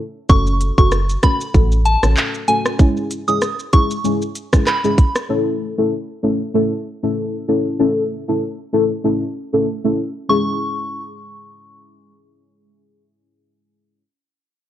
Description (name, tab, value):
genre	dancehall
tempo	96 BPM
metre	4/4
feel	swing 56% on 16ths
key	C# minor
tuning	A4 = 440 Hz
part	soft synth bell	melody	0.3-5.1, 10.3-12.1 s	G#5 to D#6	-21 LUFS	equal	chorus, tape echo
part	deep mellow chord stab	accompaniment	0.3-14.0 s	G#3 to A4	-19 LUFS	left 1 dB	chorus, phaser
part	woody FM bass	bass	0.3-2.1 s	F#1 to A1	-16 LUFS	equal	none
part	island pop drum kit	drums	0.3-5.3 s	handclaps, hi-hat, kick drum, rim click, shaker	-15 LUFS	equal	none
room	light reverb, digital ambience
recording	worn, warbling old tape, cassette tape, warbly pitch drift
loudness	-15 LUFS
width	side -12 dB against mid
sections	0.0-10.3 A section; 10.3-12.8 B section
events	none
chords	0.3 F#m; 2.8 C#m; 5.3 A; 10.3 C#m